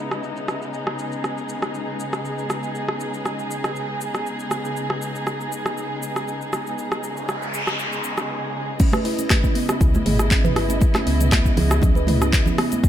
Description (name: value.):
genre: afro house.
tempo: 119 BPM.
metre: 4/4.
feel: swing 53% on 16ths.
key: C# minor.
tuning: A4 = 440 Hz.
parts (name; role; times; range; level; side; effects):
dark studio string section; sustained chords; 0.0-12.9 s; C#3 to D#5; -27 LUFS; equal; sidechain pumping.
deep house drum kit; drums; 0.1-12.9 s; crash cymbal, handclaps, hi-hat, rim click, shaker, toms; -26 LUFS; equal; low-pass filter on cymbals, studio reverb, low-pass filter on perc, low-pass filter on snare, low-pass filter on hats, low-pass filter on toms.
noise sweep; sound effects; 7.1-8.8 s; none; -29 LUFS; equal; none.
kalimba; arpeggios; 8.8-12.7 s; B3 to B4; -25 LUFS; right 2 dB; sidechain pumping, tape echo.
electronic kick drum; drums; 8.8-12.9 s; none; -18 LUFS; equal; studio reverb.
congas; percussion; 8.8-12.9 s; none; -26 LUFS; right 2 dB; none.
woody FM bass; bass; 9.8-12.5 s; G#1 to C#2; -22 LUFS; equal; tube saturation, sidechain pumping.
room: light reverb.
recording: none.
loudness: -20 LUFS.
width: side -11 dB against mid.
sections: 0.0-8.8 A section; 8.8-12.9 B section.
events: noise sweep 7.1-8.8; break 8.3-8.8; drop 8.8-12.9.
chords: 0.0 C#7sus2; 8.8 C#m9.